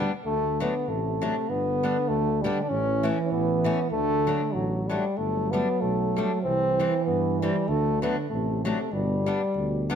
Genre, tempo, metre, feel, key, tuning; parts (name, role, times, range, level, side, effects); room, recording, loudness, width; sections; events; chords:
alpine folk, alpine dance band; 97 BPM; 2/4; swing 55% on 8ths; G major; A4 = 440 Hz
warm euphonium; melody; 0.0-9.9 s; F#3 to D4; -26 LUFS; left 2 dB
picked old ladder-braced acoustic guitar; accompaniment; 0.0-10.0 s; E3 to D4; -32 LUFS; left 4 dB
dark tuba; bass; 0.0-10.0 s; G1 to G2; -31 LUFS; equal
dark euphonium; second line; 0.3-10.0 s; B2 to F#3; -30 LUFS; right 6 dB
light reverb; close, detailed microphones; -23 LUFS; side -8 dB against mid
0.0-10.0 A section
0.3 D; 1.5 G; 2.7 A; 3.9 D; 5.2 Gsus2; 6.5 C; 7.7 D7; 8.9 G